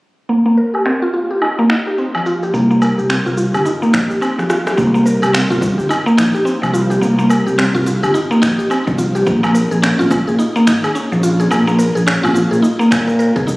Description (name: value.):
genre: organic downtempo.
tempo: 107 BPM.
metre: 4/4.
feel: swing 60% on 16ths.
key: unclear.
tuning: A4 = 437 Hz.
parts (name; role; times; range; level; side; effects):
mallet-like synth pluck; arpeggios; 0.3-13.6 s; F3 to Bb4; -14 LUFS; equal; chorus, ping-pong delay.
electronic cabasa, woodblock, finger snaps and rim click; drums; 0.3-13.6 s; none; -20 LUFS; equal; low-pass filter on perc, low-pass filter on snare, low-pass filter on room.
fretless electric bass; bass; 2.5-13.6 s; F1 to Bb2; -17 LUFS; equal; none.
electronic kick drum; drums; 3.9-13.6 s; none; -22 LUFS; equal; overdrive.
djembe; percussion; 5.1-13.5 s; none; -25 LUFS; equal; none.
room: moderate lush hall reverb, RT60 2.0 s.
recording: recorded on a phone in the room, studio reverb, compression.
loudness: -12 LUFS.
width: side -22 dB against mid.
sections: 0.3-4.8 A section; 4.8-13.6 B section.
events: filter sweep on drum 0.3-4.8; filter sweep on synth pluck 0.3-4.8; drum fill 4.4-4.8.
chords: 0.3 Cm7; 9.3 Bb7(no3).